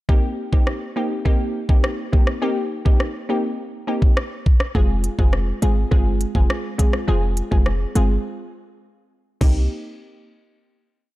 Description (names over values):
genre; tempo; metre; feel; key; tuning
dancehall; 103 BPM; 4/4; straight; C minor; A4 = 440 Hz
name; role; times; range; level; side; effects
glassy wavetable pluck; accompaniment; 0.1-9.6 s; Ab3 to Ab4; -24 LUFS; left 1 dB; chorus
island pop drum kit; drums; 0.1-9.5 s; crash cymbal, hi-hat, kick drum, rim click; -17 LUFS; equal; overdrive
short 808-style bass; bass; 4.8-9.7 s; F1 to C2; -20 LUFS; equal; none
room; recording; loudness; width
little or no reverb; dark, warm production; -18 LUFS; side -17 dB against mid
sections
0.1-9.4 verse; 9.4-11.2 final chord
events
break 8.2-9.4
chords
0.1 Cm7; 4.8 Fm; 9.4 Cm7